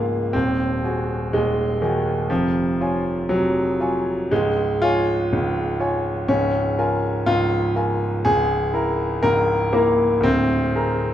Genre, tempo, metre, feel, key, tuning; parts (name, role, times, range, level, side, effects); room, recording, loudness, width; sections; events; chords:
classical, romantic character piece for solo piano; 61 BPM; 2/4; rubato; Db major; A4 = 441 Hz
bright concert grand piano; solo; 0.0-11.1 s; Db1 to Bb5; -18 LUFS; equal
wet recital hall reverb, RT60 1.5 s; -18 LUFS; side -11 dB against mid
0.0-11.1 A section
0.3 Ab7/Eb; 2.3 Db/F; 4.3 Db; 6.3 Bbm7/Db; 8.2 Bbm7b5/Db; 10.2 Bb7/D